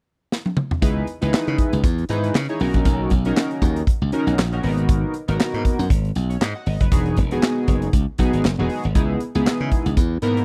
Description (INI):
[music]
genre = early-eighties boogie funk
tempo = 118 BPM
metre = 4/4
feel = swing 56% on 16ths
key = C# dorian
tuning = A4 = 440 Hz
[part]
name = modern studio drum kit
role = drums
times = 0.3-10.4 s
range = handclaps, hi-hat, kick drum, snare drum, toms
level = -22 LUFS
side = equal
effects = none
[part]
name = chorused polysynth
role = accompaniment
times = 0.8-10.4 s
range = B3 to F#5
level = -26 LUFS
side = equal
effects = none
[part]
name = glassy slap bass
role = bass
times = 0.8-10.4 s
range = E1 to C#3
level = -24 LUFS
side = equal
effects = none
[sound]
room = studio reverb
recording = dry, close 1970s-style studio recording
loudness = -20 LUFS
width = mono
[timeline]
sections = 0.8-10.4 A section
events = drum fill 0.3-0.8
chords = 0.0 N.C.; 0.8 C#m7; 2.6 Bmaj7; 4.6 G#m7; 6.9 Emaj9; 9.0 C#m7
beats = 0.31 | 0.82 1.33 1.84 2.35 | 2.85 3.36 3.87 4.38 | 4.89 5.40 5.91 6.41 | 6.92 7.43 7.94 8.45 | 8.96 9.46 9.97